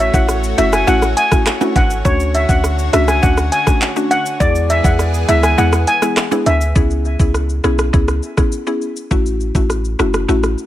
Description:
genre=dancehall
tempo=102 BPM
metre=4/4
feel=straight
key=C# phrygian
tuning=A4 = 440 Hz
part: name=steel pan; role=melody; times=0.0-6.6 s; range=C#5 to G#5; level=-17 LUFS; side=equal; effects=tape echo
part: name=mallet-like synth pluck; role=accompaniment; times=0.0-10.5 s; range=G#3 to G#4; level=-20 LUFS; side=left 2 dB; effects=chorus
part: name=lush unison pad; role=sustained chords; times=0.0-6.7 s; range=D3 to C#5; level=-25 LUFS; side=equal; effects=chorus, sidechain pumping
part: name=clean 808-style bass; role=bass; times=0.0-10.6 s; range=F#1 to E2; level=-17 LUFS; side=equal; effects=none
part: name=island pop drum kit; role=drums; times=0.1-10.7 s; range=handclaps, hi-hat, kick drum, rim click, shaker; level=-17 LUFS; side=equal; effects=vintage 12-bit sampler grit
part: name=maracas and timbales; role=percussion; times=0.1-6.7 s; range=none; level=-26 LUFS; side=right 7 dB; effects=none
room=digital ambience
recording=none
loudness=-12 LUFS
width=side -13 dB against mid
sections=0.0-6.8 A section; 6.8-10.7 B section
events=kick muted 5.6-6.8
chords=0.0 A6; 2.1 Dmaj7; 4.4 E; 6.8 C#m7; 9.1 A6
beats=0.29 0.88 1.46 | 2.05 2.64 3.23 3.82 | 4.41 4.99 5.58 6.17 | 6.76 7.35 7.93 8.52 | 9.11 9.70 10.29

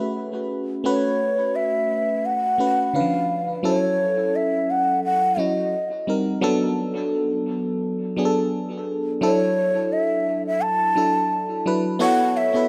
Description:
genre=R&B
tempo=86 BPM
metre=4/4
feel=swing 56% on 16ths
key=A major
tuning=A4 = 440 Hz
part: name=breathy mellow shakuhachi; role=melody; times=0.0-12.7 s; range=C#5 to A5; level=-24 LUFS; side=equal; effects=tape echo
part: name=FM electric piano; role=accompaniment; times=0.0-12.7 s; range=D3 to C#5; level=-25 LUFS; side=equal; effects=chorus, tape echo
room=moderate echo chamber reverb, RT60 1.6 s, studio ambience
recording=echo-heavy mix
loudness=-22 LUFS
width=mono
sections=0.8-12.0 A section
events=none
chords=0.0 A69; 2.9 C#7b9; 3.6 F#m7; 5.7 Cm7; 6.4 Bm7; 9.2 E9sus4; 12.0 A69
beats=0.14 | 0.83 1.53 2.23 2.93 | 3.62 4.32 5.02 5.72 | 6.42 7.11 7.81 8.51 | 9.21 9.90 10.60 11.30 | 12.00

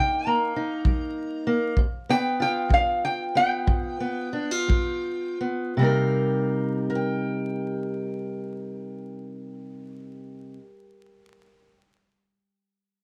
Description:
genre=acoustic country blues, solo or duo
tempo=54-66 BPM (dotted quarters)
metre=12/8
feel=straight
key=C minor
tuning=A4 = 444 Hz
part: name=lap resonator guitar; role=melody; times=0.0-5.4 s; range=F5 to Bb5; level=-26 LUFS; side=equal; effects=plate reverb
part: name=fingerpicked steel-string acoustic guitar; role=accompaniment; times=0.0-11.8 s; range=G2 to G5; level=-29 LUFS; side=equal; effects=none
part: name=kick drum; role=drums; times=0.8-4.9 s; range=none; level=-25 LUFS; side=equal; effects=none
room=light reverb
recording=close, detailed microphones, vinyl crackle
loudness=-25 LUFS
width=mono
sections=0.0-5.8 A section; 5.8-10.2 B section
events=resonator guitar played with a steel bar solo 0.0-5.8; slowing down 0.5-5.8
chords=0.0 Cm7; 1.8 G7; 5.8 Cm7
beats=0.85 | 1.76 2.70 3.67 4.69 | 5.77 6.89 8.00 9.12

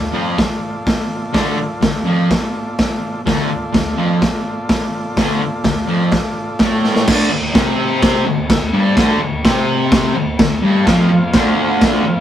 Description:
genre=garage rock duo or trio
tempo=126 BPM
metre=4/4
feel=straight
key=D minor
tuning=A4 = 440 Hz
part: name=combo organ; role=sustained chords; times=0.0-7.0, 10.8-12.2 s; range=F4 to F5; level=-25 LUFS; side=equal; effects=none
part: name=fuzz guitar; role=riff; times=0.0-12.2 s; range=D2 to C4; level=-16 LUFS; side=equal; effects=distortion
part: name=raw garage drum kit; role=drums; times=0.4-11.9 s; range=crash cymbal, hi-hat, kick drum, snare drum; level=-16 LUFS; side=equal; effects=none
room=light reverb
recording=rough rehearsal-room recording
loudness=-13 LUFS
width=side -11 dB against mid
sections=0.0-7.1 A section; 7.1-12.2 B section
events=drum fill 6.8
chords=0.0 Dm; 7.1 D7sus4; 10.9 F5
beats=0.38 0.86 | 1.34 1.82 2.30 2.78 | 3.26 3.73 4.21 4.69 | 5.17 5.65 6.12 6.60 | 7.08 7.55 8.02 8.50 | 8.97 9.44 9.92 10.39 | 10.86 11.33 11.80

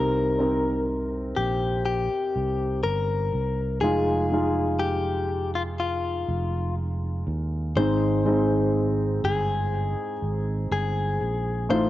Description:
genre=pop ballad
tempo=61 BPM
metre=4/4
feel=straight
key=unclear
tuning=A4 = 440 Hz
part: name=direct-recorded clean electric guitar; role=melody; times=0.0-11.9 s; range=F4 to C5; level=-28 LUFS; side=left 4 dB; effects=cassette tape
part: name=dark concert grand piano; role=accompaniment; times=0.0-11.9 s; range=Ab2 to C5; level=-27 LUFS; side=equal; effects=cassette tape
part: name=sustaining fretless electric bass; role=bass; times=0.0-11.9 s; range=F1 to Eb2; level=-27 LUFS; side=right 1 dB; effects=none
room=light reverb, studio ambience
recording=home recording on cassette, nothing above 7.8 kHz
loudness=-23 LUFS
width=side -14 dB against mid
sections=0.0-11.9 A section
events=none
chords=0.0 Cm7; 3.8 Fm7; 7.8 Ab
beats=0.88 1.87 2.85 | 3.83 4.82 5.80 6.78 | 7.77 8.75 9.73 10.72 | 11.70

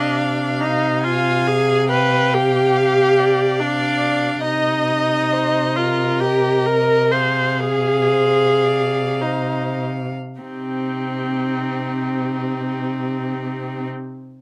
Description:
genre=classical, slow romantic movement for string quartet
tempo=46-72 BPM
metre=3/4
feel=rubato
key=C minor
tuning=A4 = 440 Hz
part: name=clear violin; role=melody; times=0.0-13.9 s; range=G4 to F5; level=-30 LUFS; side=equal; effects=none
part: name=rich violin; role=second line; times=0.0-13.9 s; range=Eb4 to Ab5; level=-30 LUFS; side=equal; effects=none
part: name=rich viola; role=accompaniment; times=0.0-13.9 s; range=C4 to C5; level=-21 LUFS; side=equal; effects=none
part: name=warm cello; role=bass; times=0.0-13.9 s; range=C3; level=-26 LUFS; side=equal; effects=none
room=light reverb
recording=close, detailed microphones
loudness=-19 LUFS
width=mono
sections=0.0-10.4 A section; 10.4-13.7 B section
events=slowing down 3.2-10.4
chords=0.0 F5/C; 4.4 Cm; 7.1 Fm/C; 10.4 Cm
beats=0.15 1.04 | 1.91 2.75 3.60 | 4.45 5.31 6.20 | 7.12 8.11 9.21 | 10.41 11.50 12.58

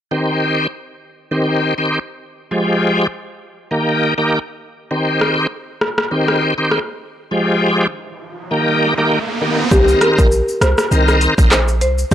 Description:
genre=dancehall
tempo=100 BPM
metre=4/4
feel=swing 56% on 16ths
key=C minor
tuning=A4 = 439 Hz
part: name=bright tonewheel organ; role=accompaniment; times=0.1-12.1 s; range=Eb3 to Bb4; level=-16 LUFS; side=equal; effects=chorus vibrato, slow rotary speaker
part: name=deep house drum kit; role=drums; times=5.2-12.1 s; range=handclaps, hi-hat, kick drum, rim click, shaker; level=-16 LUFS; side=equal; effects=overdrive, vintage 12-bit sampler grit
part: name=riser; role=sound effects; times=8.3-9.7 s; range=none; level=-24 LUFS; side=right 2 dB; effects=none
part: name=marimba with medium mallets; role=melody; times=9.7-12.1 s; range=G4 to C5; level=-17 LUFS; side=left 1 dB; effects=analog delay
part: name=warm 808-style bass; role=bass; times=9.7-12.1 s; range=G1 to C2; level=-16 LUFS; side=equal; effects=none
part: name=maracas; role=percussion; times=9.7-12.1 s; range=none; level=-32 LUFS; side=left 3 dB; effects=none
room=digital ambience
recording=dry, gritty hardware recording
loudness=-14 LUFS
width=side -10 dB against mid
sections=0.1-9.7 A section; 9.7-12.1 B section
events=riser 8.3-9.7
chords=0.1 Cm; 2.5 Fmadd9; 3.7 Eb; 4.9 Cm; 7.3 Fmadd9; 8.5 Eb; 9.7 Cm7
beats=| 0.12 0.71 1.31 1.92 | 2.52 3.12 3.71 4.32 | 4.92 5.51 6.12 6.71 | 7.32 7.92 8.52 9.12 | 9.71 10.31 10.91 11.52 | 12.12

